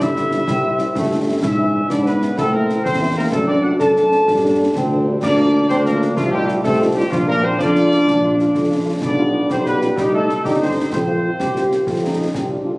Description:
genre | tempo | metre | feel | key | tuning
military-style march for wind band | 126 BPM (dotted quarters) | 6/8 | straight | Bb major from 5.2 s | A4 = 436 Hz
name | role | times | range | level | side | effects
dark trumpet section | melody | 0.0-12.3 s | F4 to A5 | -23 LUFS | equal | none
warm euphonium | second line | 0.0-12.3 s | F3 to A4 | -20 LUFS | equal | none
warm trombone section | sustained chords | 0.0-12.6 s | G3 to G4 | -24 LUFS | equal | none
mellow tuba | bass | 0.0-12.7 s | G1 to A2 | -20 LUFS | equal | none
concert snare drum, concert bass drum and clash cymbals | drums | 0.0-12.5 s | none | -26 LUFS | equal | none
dark French horn section | accompaniment | 0.2-12.7 s | E3 to F4 | -26 LUFS | left 1 dB | none
room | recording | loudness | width
moderate concert hall reverb, RT60 2.1 s | recorded on a phone in the room, club reverb | -15 LUFS | side -24 dB against mid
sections
0.0-12.8 A section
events
none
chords
0.0 C; 1.4 E7/G#; 2.4 Am; 3.3 D7/F#; 4.3 Gm; 5.2 Bb/D; 6.2 F7/C; 7.1 Bb; 9.0 G7/B; 10.0 Cm; 10.9 Fsus4; 11.9 F

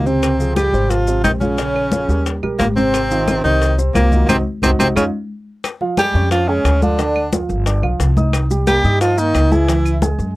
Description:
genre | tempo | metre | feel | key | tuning
Afro-Cuban jazz | 178 BPM | 4/4 | straight | unclear | A4 = 445 Hz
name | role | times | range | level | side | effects
breathy tenor saxophone | melody | 0.0-10.0 s | Bb3 to G4 | -18 LUFS | equal | none
mellow baritone saxophone | second line | 0.0-10.0 s | Bb2 to G3 | -24 LUFS | right 3 dB | none
upright bass | bass | 0.0-10.4 s | G1 to G2 | -18 LUFS | equal | none
dark baby grand piano | accompaniment | 0.1-10.3 s | C3 to Eb6 | -22 LUFS | right 2 dB | none
bongos | percussion | 0.1-10.4 s | none | -27 LUFS | left 6 dB | none
maracas | percussion | 0.1-10.4 s | none | -33 LUFS | left 5 dB | none
claves | percussion | 0.2-10.0 s | none | -28 LUFS | right 5 dB | none
congas | percussion | 0.2-10.4 s | none | -22 LUFS | left 2 dB | none
room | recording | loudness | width
little or no reverb | dry, close 1970s-style studio recording | -14 LUFS | side -19 dB against mid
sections
0.0-5.6 A section; 5.6-10.4 B section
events
band accent 4.3-5.6; drum fill 5.1-5.6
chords
0.2 Dbmaj7; 1.6 Bbm7; 2.3 Eb6; 2.9 Ab69; 4.3 Cdim; 5.0 Dbadd9/F; 5.6 Db; 7.0 Dmadd11; 7.7 G7; 8.3 Cm7; 9.7 Dbm

